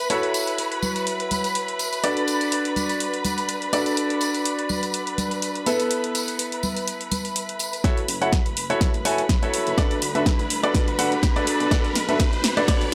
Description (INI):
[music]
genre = piano house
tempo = 124 BPM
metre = 4/4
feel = swing 55% on 16ths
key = F# minor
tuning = A4 = 439 Hz
[part]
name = dark symphonic violin section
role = sustained chords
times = 0.0-12.9 s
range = B4 to B5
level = -31 LUFS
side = equal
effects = sidechain pumping
[part]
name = clear concert grand piano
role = riff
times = 0.0-12.8 s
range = B3 to G#5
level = -27 LUFS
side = equal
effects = sidechain pumping, low-pass filter
[part]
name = punchy analog drum machine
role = drums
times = 0.1-12.9 s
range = hi-hat, snare drum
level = -30 LUFS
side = equal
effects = overdrive
[part]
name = tambourine and congas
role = percussion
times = 0.1-7.8 s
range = none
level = -32 LUFS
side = equal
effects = none
[part]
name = electronic kick drum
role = drums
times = 7.8-12.8 s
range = none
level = -24 LUFS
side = equal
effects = none
[part]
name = riser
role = sound effects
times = 9.5-12.9 s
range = none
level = -38 LUFS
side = equal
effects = none
[part]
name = fat analog bass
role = bass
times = 8.1-12.9 s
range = F#1 to D2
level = -37 LUFS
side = equal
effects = sidechain pumping, high-pass filter
[sound]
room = moderate digital room reverb, RT60 1.2 s, small room ambience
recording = dry, gritty hardware recording, transformer saturation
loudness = -23 LUFS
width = mono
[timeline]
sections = 0.0-7.8 A section; 7.8-12.9 B section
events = build-up 7.8-12.9; drum fill 7.8-12.9; riser 9.5-12.9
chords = 0.1 F#m7; 2.0 D6; 5.7 Asus2; 7.8 F#m7; 9.8 D6; 11.5 Bm7